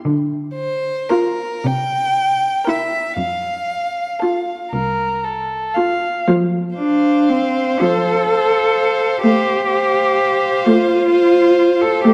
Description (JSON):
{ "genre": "classical, slow romantic movement for string quartet", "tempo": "36-43 BPM (dotted quarters)", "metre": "6/8", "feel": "rubato", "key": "F major", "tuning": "A4 = 440 Hz", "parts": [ { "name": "rich cello", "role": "bass", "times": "0.1-12.1 s", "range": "C2 to A4", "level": "-18 LUFS", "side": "equal", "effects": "none" }, { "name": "rich violin", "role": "melody", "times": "0.5-12.0 s", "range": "Bb4 to G5", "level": "-24 LUFS", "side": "equal", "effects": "none" }, { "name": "warm violin", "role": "second line", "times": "1.1-12.0 s", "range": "A4 to F5", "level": "-23 LUFS", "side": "equal", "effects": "none" }, { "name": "rich viola", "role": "accompaniment", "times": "1.1-12.1 s", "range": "F3 to F4", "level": "-20 LUFS", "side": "equal", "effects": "none" } ], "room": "moderate concert hall reverb, RT60 1.9 s", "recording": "dark, warm production", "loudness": "-17 LUFS", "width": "mono", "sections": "0.0-6.3 A section; 6.3-12.1 A section", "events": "none", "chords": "0.1 Bb/D; 1.6 C7; 3.2 F; 9.2 F/A" }